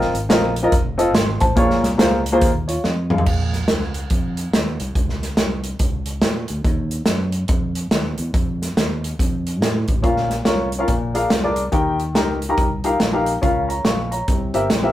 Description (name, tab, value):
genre	uptempo gospel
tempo	142 BPM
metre	4/4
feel	swing 63% on 8ths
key	Bb minor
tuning	A4 = 440 Hz
part	warm upright piano	accompaniment	0.0-3.5, 10.0-14.9 s	Bb2 to Db6	-19 LUFS	left 1 dB	none
part	fingered electric bass	bass	0.0-14.9 s	F1 to Bb2	-25 LUFS	equal	none
part	modern studio drum kit	drums	0.0-14.8 s	crash cymbal, hi-hat, kick drum, snare drum, toms	-20 LUFS	equal	none
room	light reverb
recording	rough rehearsal-room recording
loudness	-17 LUFS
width	side -14 dB against mid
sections	0.0-3.3 A section; 3.3-14.9 B section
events	drum fill 2.8-3.3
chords	0.0 F7sus4; 0.7 F7; 1.6 Bbm7; 3.3 Bbm; 4.9 Bbmadd9/C; 6.6 Ebm; 8.3 Ebsus2; 9.2 F; 10.0 Bbm; 10.9 Bb7; 11.7 Eb; 13.4 Bbm/Db; 14.3 C7